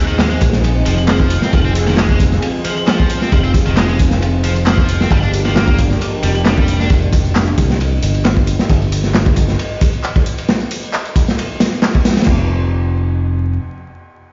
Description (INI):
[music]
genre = breakbeat, breaks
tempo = 134 BPM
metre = 4/4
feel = straight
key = unclear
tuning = A4 = 440 Hz
[part]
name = phased analog pad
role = sustained chords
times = 0.0-8.7 s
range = F3 to Ab4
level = -25 LUFS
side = equal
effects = phaser, chorus, sidechain pumping
[part]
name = fingered electric bass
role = bass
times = 0.0-9.5, 12.3-13.6 s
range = F1 to Eb2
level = -18 LUFS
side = equal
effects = tube saturation
[part]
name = scooped high-gain guitar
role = riff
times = 0.1-6.9 s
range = Eb3 to D4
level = -25 LUFS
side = equal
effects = distortion, tube saturation, delay
[part]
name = punchy analog drum machine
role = drums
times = 0.1-12.3 s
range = handclaps, hi-hat, tambourine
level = -28 LUFS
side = equal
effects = none
[part]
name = crunchy breakbeat drum kit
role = drums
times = 0.2-12.4 s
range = crash cymbal, kick drum, ride cymbal, snare drum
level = -17 LUFS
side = equal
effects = none
[sound]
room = small room ambience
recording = played on a big sound system in a bare room, stone room reverb, vinyl crackle, nothing above 7.5 kHz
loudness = -15 LUFS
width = mono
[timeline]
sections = 0.0-12.3 A section; 12.3-14.3 B section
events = drop 0.0-12.3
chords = 0.0 Fm7; 5.1 Gm7; 12.3 N.C.